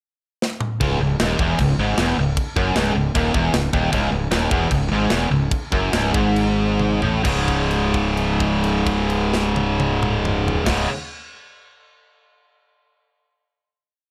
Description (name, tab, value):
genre	heavy metal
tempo	130-154 BPM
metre	4/4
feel	straight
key	C# minor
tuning	A4 = 439 Hz
part	tight metal drum kit	drums	0.4-10.8 s	crash cymbal, kick drum, snare drum, toms	-27 LUFS	equal	none
part	high-gain distorted guitar	riff	0.8-10.9 s	C#2 to C#3	-22 LUFS	equal	distortion
part	fuzz fingered electric bass	bass	0.8-10.9 s	C#1 to A1	-26 LUFS	equal	overdrive
room	light reverb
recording	none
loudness	-20 LUFS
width	mono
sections	0.0-0.8 pickup bar; 0.8-7.3 riff; 7.3-10.9 final chord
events	drum fill 0.4-0.8, 6.8-7.3; slowing down 3.9-7.3; held note 7.3-10.7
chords	0.0 N.C.; 0.8 C#m; 7.3 C#5